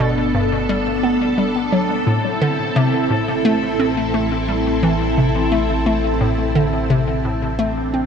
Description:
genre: ambient, sequencer-driven space music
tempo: 87 BPM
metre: 4/4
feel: straight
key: A minor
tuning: A4 = 440 Hz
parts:
  - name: string machine, full ensemble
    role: sustained chords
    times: 0.0-8.1 s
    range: B3 to A4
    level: -19 LUFS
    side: equal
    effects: phaser, ensemble chorus
  - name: hollow square pluck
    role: riff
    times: 0.0-8.1 s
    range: G2 to C4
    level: -19 LUFS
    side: left 1 dB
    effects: chorus, ping-pong delay
  - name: analog drone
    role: bass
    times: 0.0-8.1 s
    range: G1 to A1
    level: -26 LUFS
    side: equal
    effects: chorus
room: wet cathedral reverb, RT60 5.0 s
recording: in a vast, echoing space, nothing above 10.9 kHz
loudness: -16 LUFS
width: side -7 dB against mid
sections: 0.0-8.1 A section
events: fade-out 5.8-8.1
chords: 0.0 G; 2.1 Am

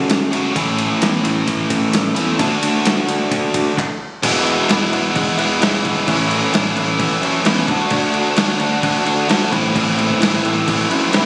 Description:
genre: indie rock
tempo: 130 BPM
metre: 4/4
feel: straight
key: unclear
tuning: A4 = 440 Hz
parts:
  - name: biting overdriven guitar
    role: riff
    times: 0.0-11.3 s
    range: E2 to F#4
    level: -19 LUFS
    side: equal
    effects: none
  - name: modern bright picked electric bass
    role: bass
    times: 0.1-11.3 s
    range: E1 to F#2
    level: -26 LUFS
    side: equal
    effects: none
  - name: dusty soul sampler-style drum kit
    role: drums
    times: 0.1-11.2 s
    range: crash cymbal, handclaps, kick drum, ride cymbal, snare drum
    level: -22 LUFS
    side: equal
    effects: none
room: little or no reverb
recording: recorded on a phone in the room, studio reverb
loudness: -17 LUFS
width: mono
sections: 0.0-4.2 A section; 4.2-11.3 B section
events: stop 3.8-4.2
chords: 0.0 F#m; 0.6 A; 2.4 D; 4.2 E; 6.1 A; 7.7 D; 9.5 Am

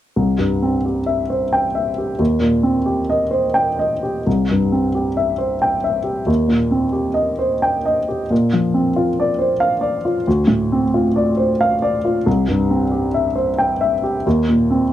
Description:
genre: neoclassical minimalist piano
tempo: 90 BPM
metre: 3/4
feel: rubato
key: unclear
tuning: A4 = 441 Hz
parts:
  - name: dark baby grand piano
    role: solo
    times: 0.2-14.9 s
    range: C2 to G5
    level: -15 LUFS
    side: equal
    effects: none
room: little or no reverb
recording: dry, close 1970s-style studio recording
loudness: -15 LUFS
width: side -12 dB against mid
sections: 0.2-4.3 A section; 4.3-14.9 B section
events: none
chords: 0.2 C; 2.2 Eb6; 4.3 C; 6.3 Eb6; 8.3 Bbadd9; 10.3 Dm7; 12.3 C; 14.3 Eb5

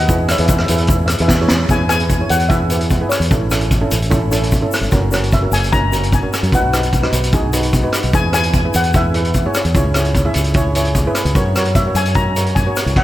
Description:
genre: calypso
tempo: 149 BPM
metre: 4/4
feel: straight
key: E major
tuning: A4 = 445 Hz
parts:
  - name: steel pan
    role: melody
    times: 0.0-13.0 s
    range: C#5 to A#5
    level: -21 LUFS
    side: left 2 dB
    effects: slapback echo, tape echo
  - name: fingered electric bass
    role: bass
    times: 0.0-13.0 s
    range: F#1 to F#2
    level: -18 LUFS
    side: equal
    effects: none
  - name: steel pan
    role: accompaniment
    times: 0.1-12.9 s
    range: C#4 to E5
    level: -21 LUFS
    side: right 1 dB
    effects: slapback echo
  - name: street-band drum kit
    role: drums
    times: 0.1-13.0 s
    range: crash cymbal, hi-hat, kick drum, rim click, snare drum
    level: -17 LUFS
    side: equal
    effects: none
  - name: egg shaker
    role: percussion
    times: 0.1-12.9 s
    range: none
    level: -31 LUFS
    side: left 6 dB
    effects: none
room: moderate lush hall reverb, RT60 2.4 s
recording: big arena sound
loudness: -13 LUFS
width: side -14 dB against mid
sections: 0.0-1.7 A section; 1.7-13.0 B section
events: drum fill 1.3-1.7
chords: 0.1 E; 3.3 A; 4.9 F#; 6.5 B; 8.1 E; 9.8 C#m; 11.4 F#

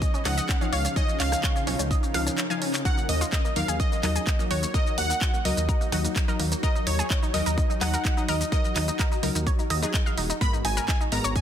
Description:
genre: progressive house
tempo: 127 BPM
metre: 4/4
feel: straight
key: Eb minor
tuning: A4 = 440 Hz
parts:
  - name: plucky unison lead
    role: melody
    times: 0.0-11.4 s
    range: Db5 to Cb6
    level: -31 LUFS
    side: equal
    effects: dub echo
  - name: shimmering ambient pad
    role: sustained chords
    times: 0.0-11.4 s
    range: Cb3 to Bb4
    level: -34 LUFS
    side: equal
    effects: chorus, built-in reverb, sidechain pumping
  - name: analog pluck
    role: arpeggios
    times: 0.0-11.4 s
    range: Bb3 to Ab5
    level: -33 LUFS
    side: equal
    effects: chorus, sidechain pumping, dub echo
  - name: wide unison pluck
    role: stabs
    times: 0.0-11.4 s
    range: Ab2 to F5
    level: -33 LUFS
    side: left 3 dB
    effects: sidechain pumping, dub echo
  - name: dark detuned saw bass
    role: bass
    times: 0.0-11.4 s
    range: Eb1 to Eb2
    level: -28 LUFS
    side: equal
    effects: sidechain pumping
  - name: electronic kick drum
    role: drums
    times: 0.0-11.4 s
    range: none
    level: -25 LUFS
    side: equal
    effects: none
  - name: pop drum kit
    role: drums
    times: 0.0-11.4 s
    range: handclaps, hi-hat, rim click, shaker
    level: -31 LUFS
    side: right 1 dB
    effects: soft clipping on snare
room: light reverb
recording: dense, heavily limited modern master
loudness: -22 LUFS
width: side -9 dB against mid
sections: 0.0-11.4 A section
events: drum fill 2.4-2.9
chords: 0.0 Dbadd9; 2.9 Ebm; 10.4 Abmadd9

